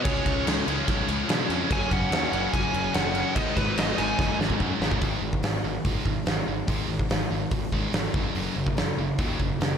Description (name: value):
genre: hard rock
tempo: 144 BPM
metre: 4/4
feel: straight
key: G# dorian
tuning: A4 = 442 Hz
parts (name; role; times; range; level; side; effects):
- high-gain lead guitar; melody; 0.0-4.4 s; B4 to G#5; -30 LUFS; equal; distortion
- octave-fuzz lead guitar; second line; 0.0-4.4 s; F#3 to D#4; -36 LUFS; right 4 dB; distortion, slapback echo, analog delay
- high-gain distorted guitar; riff; 0.0-5.0 s; F#2 to D#4; -33 LUFS; right 1 dB; distortion
- scooped high-gain guitar; riff; 0.0-9.8 s; F#2 to C#4; -32 LUFS; right 9 dB; distortion
- sludgy distorted guitar; riff; 0.0-9.8 s; F#2 to C#4; -32 LUFS; left 9 dB; overdrive
- fuzz picked electric bass; bass; 0.1-9.7 s; F#1 to B2; -32 LUFS; equal; overdrive
- huge arena drum kit; drums; 0.1-9.7 s; crash cymbal, hi-hat, kick drum, snare drum; -27 LUFS; equal; none
room: moderate recital hall reverb, RT60 1.3 s, small room reverb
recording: big arena sound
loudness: -23 LUFS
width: side -8 dB against mid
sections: 0.0-5.0 A section; 5.0-9.8 B section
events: drum fill 4.2-5.0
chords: 0.1 C#; 1.7 F#; 3.4 G#m; 5.0 G#5; 8.1 F#5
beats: | 0.05 0.47 0.88 1.29 | 1.70 2.12 2.53 2.94 | 3.36 3.77 4.19 4.60 | 5.02 5.43 5.85 6.26 | 6.68 7.10 7.52 7.93 | 8.35 8.77 9.19 9.61